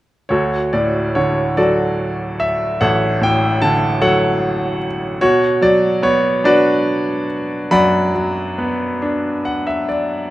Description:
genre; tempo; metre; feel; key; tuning
classical, lyrical solo piano; 49 BPM (dotted quarters); 6/8; uneven beats, rubato; B minor; A4 = 441 Hz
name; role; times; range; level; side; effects
bright grand piano; solo; 0.3-10.3 s; A1 to B5; -14 LUFS; equal; none
room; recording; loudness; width
light reverb; close, detailed microphones; -14 LUFS; side -16 dB against mid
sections
0.3-10.3 A section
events
grand piano fill 9.0-10.3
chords
0.3 Dmaj7; 5.2 Bm

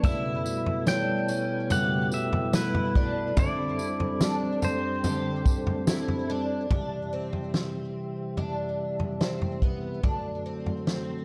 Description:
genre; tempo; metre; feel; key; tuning
dream pop; 72 BPM; 4/4; straight; C lydian; A4 = 440 Hz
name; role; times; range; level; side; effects
pedal steel guitar; melody; 0.0-5.8 s; B4 to G5; -34 LUFS; equal; digital delay
mellow electric guitar; accompaniment; 0.0-6.7 s; C#3 to A4; -36 LUFS; equal; harmonic tremolo, subtle chorus
mellow tonewheel organ; sustained chords; 0.0-11.2 s; B2 to E5; -34 LUFS; equal; chorus vibrato, stopped rotary speaker
picked twelve-string acoustic guitar; arpeggios; 0.0-11.2 s; B3 to G4; -37 LUFS; equal; ensemble chorus, digital delay
vintage drum kit; drums; 0.0-11.1 s; kick drum, snare drum, tambourine, toms; -31 LUFS; equal; none
soft synth bell; texture; 0.9-5.7 s; C#5 to D5; -41 LUFS; equal; chorus, phaser, digital delay
room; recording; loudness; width
light reverb, studio reverb; dark, warm production; -28 LUFS; mono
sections
0.0-6.7 A section; 6.7-11.2 B section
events
none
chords
0.0 A13; 3.4 D7sus4; 6.7 C; 10.0 D

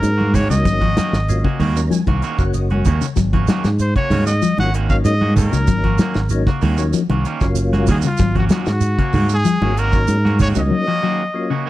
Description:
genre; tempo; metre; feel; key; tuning
afrobeat; 95 BPM; 4/4; straight; unclear; A4 = 438 Hz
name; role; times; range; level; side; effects
bright trumpet; melody; 0.0-11.7 s; F4 to Gb5; -22 LUFS; equal; none
percussive tonewheel organ; accompaniment; 0.0-11.5 s; Gb3 to Bb5; -24 LUFS; left 3 dB; slow rotary speaker, chorus vibrato
fingered electric bass; bass; 0.0-10.7 s; Gb1 to Ab2; -18 LUFS; equal; none
damped 70s drum kit; drums; 0.0-10.7 s; hi-hat, kick drum, snare drum; -20 LUFS; equal; none
shekere; percussion; 0.0-10.7 s; none; -26 LUFS; right 5 dB; none
electric guitar at the edge of break-up; stabs; 0.2-11.7 s; Eb3 to Gb4; -27 LUFS; right 6 dB; none
congas; percussion; 0.2-10.7 s; none; -22 LUFS; right 2 dB; none
mellow electric guitar; arpeggios; 0.5-11.7 s; Db3 to Gb3; -21 LUFS; left 6 dB; none
room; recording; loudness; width
studio reverb; dry, close 1970s-style studio recording; -14 LUFS; side -15 dB against mid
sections
0.0-11.7 A section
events
tonewheel organ fill 1.3-3.2; break 10.7-11.7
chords
0.0 Ab9sus4

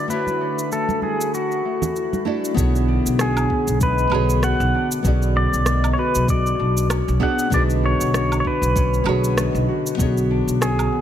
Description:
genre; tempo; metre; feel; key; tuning
sunset chillout; 97 BPM; 4/4; swing 57% on 16ths; B dorian; A4 = 444 Hz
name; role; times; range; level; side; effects
pedal steel guitar; melody; 0.0-11.0 s; F#4 to F#5; -24 LUFS; equal; digital delay
nylon-string guitar; accompaniment; 0.0-11.0 s; D3 to D5; -24 LUFS; moving between left 2 dB and right 4 dB; auto-pan
airy breathy pad; sustained chords; 0.0-2.5 s; D3 to E5; -33 LUFS; left 1 dB; chorus
concert harp; arpeggios; 0.0-11.0 s; G#3 to F#4; -27 LUFS; left 5 dB; tape echo
drifting glass-harmonics texture; texture; 0.0-2.6 s; B4 to B5; -38 LUFS; left 3 dB; none
electronic cabasa, rim click and woodblock; drums; 0.1-10.9 s; none; -27 LUFS; right 2 dB; none
congas; percussion; 0.3-2.2 s; none; -29 LUFS; right 3 dB; none
upright bass; bass; 2.6-10.9 s; B1; -21 LUFS; equal; none
electronic kick drum; drums; 2.6-10.1 s; none; -22 LUFS; equal; none
room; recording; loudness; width
light reverb, studio reverb; none; -17 LUFS; side -10 dB against mid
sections
0.0-2.6 A section; 2.6-11.0 B section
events
filter sweep on harp 0.0-2.6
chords
0.0 Dmaj9; 2.6 Bm69

